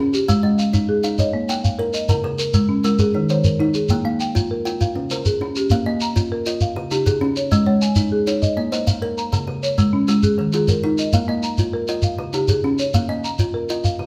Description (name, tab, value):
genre	southern african traditional, mbira-style interlocking cycle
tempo	133 BPM (dotted quarters)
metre	12/8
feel	straight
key	Bb dorian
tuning	A4 = 440 Hz
part	folk marimba with medium mallets	arpeggios	0.0-14.1 s	Db3 to Bb5	-25 LUFS	equal	none
part	kalimba	arpeggios	0.0-14.1 s	Db3 to Ab5	-24 LUFS	equal	none
part	shekere	percussion	0.1-14.0 s	none	-24 LUFS	equal	none
room	moderate large studio reverb, RT60 0.9 s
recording	band playing live in one room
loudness	-20 LUFS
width	mono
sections	0.0-5.7 A section; 5.7-14.1 B section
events	none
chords	0.3 Ab5; 1.2 Bbm; 2.1 Db5; 3.0 Eb; 3.9 Bb5; 4.8 Db; 5.7 Bb5; 6.6 Db; 7.5 Ab5; 8.4 Bbm; 9.3 Db5; 10.2 Eb; 11.1 Bb5; 12.0 Db; 12.9 Bbm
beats	| 0.28 0.74 1.19 1.64 | 2.09 2.54 3.00 3.45 | 3.90 4.35 4.81 5.26 | 5.71 6.16 6.61 7.07 | 7.52 7.97 8.42 8.87 | 9.32 9.78 10.23 10.68 | 11.13 11.58 12.04 12.49 | 12.94 13.39 13.84